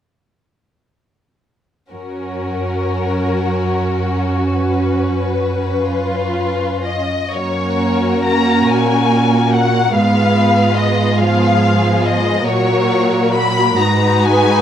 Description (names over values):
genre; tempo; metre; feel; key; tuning
classical, slow romantic movement for string orchestra; 40-49 BPM (dotted quarters); 6/8; rubato; F# major; A4 = 441 Hz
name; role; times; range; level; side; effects
warm studio violin section; melody; 1.9-14.6 s; A#4 to B5; -19 LUFS; left 4 dB; none
warm symphonic violin section; second line; 1.9-14.6 s; E#4 to Cb5; -20 LUFS; left 1 dB; none
rich studio viola section; accompaniment; 1.9-14.6 s; F3 to D#4; -19 LUFS; right 2 dB; none
rich chamber cello section; bass; 1.9-14.6 s; F#2 to A#2; -19 LUFS; right 2 dB; none
room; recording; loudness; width
light reverb; close, detailed microphones; -13 LUFS; side -9 dB against mid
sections
1.9-7.3 A section; 7.3-14.6 B section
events
none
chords
1.9 F#; 9.9 Fdim/Ab; 12.5 F#/A#; 13.8 G#m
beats
| 1.91 3.25 | 4.53 5.88 | 7.32 8.66 | 9.94 11.18 | 12.46 13.78